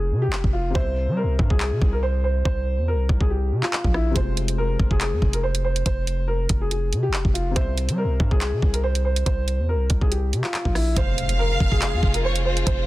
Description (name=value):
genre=hip hop, drill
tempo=141 BPM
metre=4/4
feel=half-time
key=F harmonic minor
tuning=A4 = 440 Hz
part: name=dark grand piano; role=melody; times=0.0-12.9 s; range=E4 to C5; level=-27 LUFS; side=equal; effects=none
part: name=felt-muted upright piano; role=accompaniment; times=0.0-11.0 s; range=C3 to E5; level=-35 LUFS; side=left 5 dB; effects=none
part: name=hard-hitting 808-style bass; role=bass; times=0.0-12.9 s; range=F1 to G3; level=-23 LUFS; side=equal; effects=none
part: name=drill drum kit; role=drums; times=0.3-12.8 s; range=handclaps, hi-hat, kick drum, rim click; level=-23 LUFS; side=equal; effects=none
part: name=warm symphonic violin section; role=second line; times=11.0-12.9 s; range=C5 to F5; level=-28 LUFS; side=right 1 dB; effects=tape echo
part: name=warm symphonic string section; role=sustained chords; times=11.0-12.9 s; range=Ab3 to F4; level=-31 LUFS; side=left 2 dB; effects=none
part: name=impact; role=sound effects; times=11.0-12.7 s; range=none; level=-31 LUFS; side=equal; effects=none
room=little or no reverb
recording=dense, heavily limited modern master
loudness=-20 LUFS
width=side -17 dB against mid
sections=0.0-11.0 A section; 11.0-12.9 B section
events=break 0.0-4.2; impact 11.0-12.7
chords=0.0 Fm; 0.8 C; 4.2 Fm; 7.6 C; 11.0 Fm